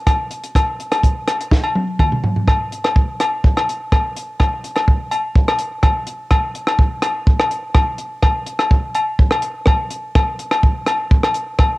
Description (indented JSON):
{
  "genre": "highlife",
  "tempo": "125 BPM",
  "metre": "4/4",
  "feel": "straight",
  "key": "none",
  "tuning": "none",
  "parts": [
    { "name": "compact cocktail drum kit", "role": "drums", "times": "0.1-11.7 s", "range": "hi-hat, kick drum, rim click, snare drum, toms", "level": "-15 LUFS", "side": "equal", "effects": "none" },
    { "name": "agogo bells", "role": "percussion", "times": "0.1-11.7 s", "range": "none", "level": "-20 LUFS", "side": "left 2 dB", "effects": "none" }
  ],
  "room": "light reverb",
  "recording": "home recording on cassette",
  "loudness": "-15 LUFS",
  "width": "side -20 dB against mid",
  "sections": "0.0-2.5 A section; 2.5-11.8 B section",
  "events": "drum fill 1.5-2.5",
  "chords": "none"
}